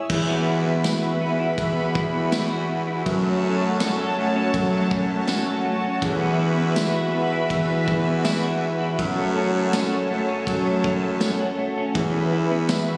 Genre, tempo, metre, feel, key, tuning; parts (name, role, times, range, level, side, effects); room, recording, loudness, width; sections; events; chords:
dream pop; 81 BPM; 4/4; straight; A4 = 440 Hz
lush unison pad; sustained chords; 0.0-13.0 s; F#4 to B5; -28 LUFS; equal; chorus, tremolo
semi-hollow electric guitar; arpeggios; 0.0-13.0 s; E3 to A4; -26 LUFS; equal; analog chorus, tape echo
breathy baritone saxophone; bass; 0.1-13.0 s; E2 to F#2; -30 LUFS; equal
vintage drum kit; drums; 0.1-12.9 s; crash cymbal, kick drum, ride cymbal, snare drum, tambourine; -31 LUFS; equal
light reverb, small room reverb; recorded on a phone in the room, club reverb, compression; -23 LUFS; mono
0.1-13.0 A section
0.1 Esus2; 3.1 F#m; 6.0 Esus2; 9.0 F#m; 12.0 Esus2